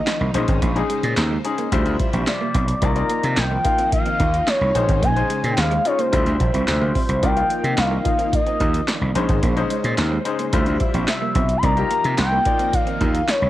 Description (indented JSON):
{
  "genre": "early-eighties boogie funk",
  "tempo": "109 BPM",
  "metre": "4/4",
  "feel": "straight",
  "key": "C phrygian",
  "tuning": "A4 = 439 Hz",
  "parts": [
    { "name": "expressive portamento lead", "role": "melody", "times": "0.0-13.5 s", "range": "C5 to C6", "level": "-22 LUFS", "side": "left 1 dB", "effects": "chorus" },
    { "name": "phased string machine", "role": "sustained chords", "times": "0.0-13.5 s", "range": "C3 to E5", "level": "-29 LUFS", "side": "right 1 dB", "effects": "ensemble chorus, phaser" },
    { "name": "clean electric guitar", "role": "riff", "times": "0.1-13.3 s", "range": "Ab3 to Eb4", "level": "-31 LUFS", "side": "right 8 dB", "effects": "lush chorus" },
    { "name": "electro analog drum machine", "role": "drums", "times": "0.1-13.4 s", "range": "handclaps, hi-hat, kick drum, snare drum", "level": "-23 LUFS", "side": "right 1 dB", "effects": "cassette tape" },
    { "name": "gritty slap bass", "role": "bass", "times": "0.2-13.5 s", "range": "Ab1 to C3", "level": "-21 LUFS", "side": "right 1 dB", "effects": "overdrive" },
    { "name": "clear baby grand piano", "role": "accompaniment", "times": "0.3-13.1 s", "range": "G3 to F5", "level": "-26 LUFS", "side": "left 6 dB", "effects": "none" }
  ],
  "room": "digital ambience",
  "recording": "home recording on cassette",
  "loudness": "-17 LUFS",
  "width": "side -14 dB against mid",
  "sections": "0.0-13.5 A section",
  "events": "none",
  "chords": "0.3 Bbm11; 1.7 Dm11; 2.8 Cm11; 4.8 Bbm11; 6.1 Dm11; 7.2 Cm11; 9.2 Bbm11; 10.5 Dm11; 11.6 Cm11"
}